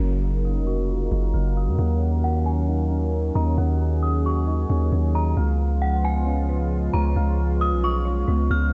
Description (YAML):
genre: hip hop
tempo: 134 BPM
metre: 4/4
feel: half-time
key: unclear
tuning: A4 = 445 Hz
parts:
  - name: warm analog pad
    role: sustained chords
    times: 0.0-8.7 s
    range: C#3 to A#4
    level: -30 LUFS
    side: equal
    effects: chorus, low-pass filter
  - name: soft electric-piano-like synth keys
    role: arpeggios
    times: 0.0-8.7 s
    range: A#3 to A#5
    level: -36 LUFS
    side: equal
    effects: chorus, low-pass filter, tape echo
  - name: long sustained 808-style bass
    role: bass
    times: 0.0-8.7 s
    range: E#1 to F#2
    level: -24 LUFS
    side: equal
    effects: none
  - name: downlifter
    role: sound effects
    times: 0.0-1.8 s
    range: none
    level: -53 LUFS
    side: equal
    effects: none
  - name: metallic FM bell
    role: melody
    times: 0.5-8.7 s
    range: F#5 to E#6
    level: -33 LUFS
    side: equal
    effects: chorus, low-pass filter, tape echo
room: light reverb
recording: nothing above 8.0 kHz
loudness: -23 LUFS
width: mono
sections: 0.0-8.7 A section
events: filter sweep 0.0-8.7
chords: 0.0 F#maj7; 1.8 D#m7; 5.4 C#7